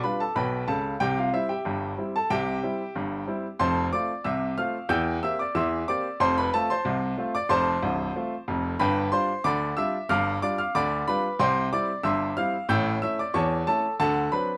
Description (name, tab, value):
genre	ragtime piano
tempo	92 BPM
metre	2/4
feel	straight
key	C major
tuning	A4 = 441 Hz
part	clear baby grand piano	solo	0.0-14.6 s	C1 to G6	-26 LUFS	equal	none
room	light reverb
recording	none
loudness	-26 LUFS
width	mono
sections	0.0-14.6 A section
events	none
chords	0.0 G7; 1.0 C; 3.6 F; 4.9 C7/E; 6.2 F; 8.8 G7; 11.4 C; 12.7 A7; 14.0 D7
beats	0.36 | 1.01 1.66 | 2.31 2.96 | 3.61 4.25 | 4.90 5.55 | 6.20 6.85 | 7.50 8.15 | 8.79 9.44 | 10.09 10.74 | 11.39 12.04 | 12.69 13.34 | 13.99